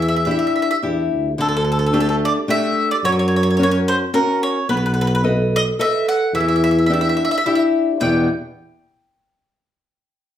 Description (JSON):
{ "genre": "italian folk, Italian serenade", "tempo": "108 BPM", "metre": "3/4", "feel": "straight", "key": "E minor", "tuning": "A4 = 440 Hz", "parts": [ { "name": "mandolin", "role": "melody", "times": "0.0-8.3 s", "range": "A4 to G5", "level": "-20 LUFS", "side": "right 1 dB", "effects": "none" }, { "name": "nylon-string guitar", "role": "accompaniment", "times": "0.0-8.3 s", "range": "E2 to D#5", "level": "-19 LUFS", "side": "left 2 dB", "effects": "none" }, { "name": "mellow tuba", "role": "bass", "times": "0.0-8.3 s", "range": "B1 to F#2", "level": "-20 LUFS", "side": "equal", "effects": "none" } ], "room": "wet large studio reverb, RT60 0.8 s", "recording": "band playing live in one room", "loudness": "-15 LUFS", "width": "side -10 dB against mid", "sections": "0.0-1.4 A section; 1.4-8.0 B section; 8.0-9.7 C section", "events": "none", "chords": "0.0 Em7; 1.4 Dsus4; 3.0 F#; 4.7 B7; 6.3 Em7" }